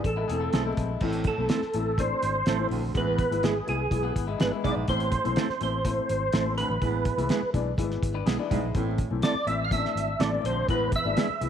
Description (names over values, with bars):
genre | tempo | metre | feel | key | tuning
uptempo 1960s-style soul | 124 BPM | 4/4 | straight | A harmonic minor | A4 = 440 Hz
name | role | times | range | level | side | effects
percussive tonewheel organ | melody | 0.0-11.5 s | G#4 to F5 | -29 LUFS | right 2 dB | chorus vibrato, slow rotary speaker, tape echo
dark upright piano | accompaniment | 0.0-11.5 s | E3 to E4 | -33 LUFS | left 9 dB | none
vintage muted fingered electric bass | bass | 0.0-11.5 s | E1 to C2 | -31 LUFS | equal | none
cloth-damped thuddy drum kit | drums | 0.0-11.5 s | crash cymbal, hi-hat, kick drum, snare drum | -29 LUFS | equal | none
electric guitar through a small old amp | riff | 0.2-1.0, 4.0-4.9, 8.1-8.7 s | G#3 to B4 | -36 LUFS | left 9 dB | none
mellow electric guitar | stabs | 0.5-11.3 s | G#3 to A4 | -34 LUFS | right 10 dB | none
mellow baritone saxophone | riff | 1.0-11.0 s | D2 to A2 | -36 LUFS | right 9 dB | none
room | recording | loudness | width
light reverb, studio reverb | 1960s-style stereo with parts hard left and right, vinyl crackle | -24 LUFS | side -8 dB against mid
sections
0.0-1.0 A section; 1.0-11.5 B section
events
none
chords
0.0 Am; 6.8 E/A; 8.8 Am; 10.7 E